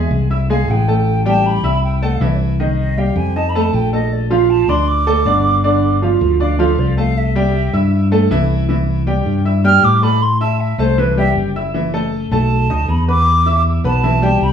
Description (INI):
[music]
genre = Afro-Cuban jazz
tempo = 157 BPM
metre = 4/4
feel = straight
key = C major, A minor from 10.2 s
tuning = A4 = 440 Hz
[part]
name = hollow concert flute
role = melody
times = 0.0-14.5 s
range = A4 to F6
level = -19 LUFS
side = right 2 dB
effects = none
[part]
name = clear upright piano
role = accompaniment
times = 0.0-14.5 s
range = D3 to E6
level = -17 LUFS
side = right 1 dB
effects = none
[part]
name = fingered electric bass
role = bass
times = 0.0-14.5 s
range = F#1 to A2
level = -16 LUFS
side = equal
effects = none
[sound]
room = wet club reverb, RT60 0.7 s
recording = heard from further back in the room, small room ambience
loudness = -13 LUFS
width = side -8 dB against mid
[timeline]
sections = 0.0-10.2 A section; 10.2-14.5 A section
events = flute solo 0.0-14.5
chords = 0.0 Eaug; 1.1 Am9; 2.6 Cm; 3.4 F7; 4.1 Bbmaj7; 5.6 Gsus2; 7.2 C6; 10.2 Am7; 11.7 F#m7; 12.5 B7#9; 13.3 Em7